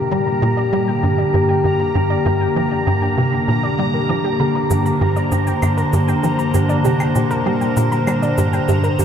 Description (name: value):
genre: ambient, sequencer-driven space music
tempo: 98 BPM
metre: 4/4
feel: straight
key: G minor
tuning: A4 = 439 Hz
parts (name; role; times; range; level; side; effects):
- evolving wavetable pad; sustained chords; 0.0-9.0 s; D3 to C5; -18 LUFS; left 1 dB; chorus, built-in reverb
- warbly dusty pluck; arpeggios; 0.0-9.0 s; G4 to D6; -25 LUFS; right 3 dB; chorus, auto-pan, cassette tape, ping-pong delay
- tight sequencer bass; riff; 0.0-9.0 s; G2 to G3; -19 LUFS; equal; ensemble chorus, ping-pong delay
- bubbling stepped-filter texture; texture; 0.0-9.0 s; Bb5; -25 LUFS; right 1 dB; chorus, built-in reverb
- cabasa and claves; percussion; 4.7-9.0 s; none; -33 LUFS; left 1 dB; overdrive, ping-pong delay
room: wet cathedral reverb, RT60 6.4 s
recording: in a vast, echoing space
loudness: -15 LUFS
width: side -8 dB against mid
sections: 0.0-9.0 A section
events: fade-in on synth arpeggio sound 0.0-9.0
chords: 0.0 Gm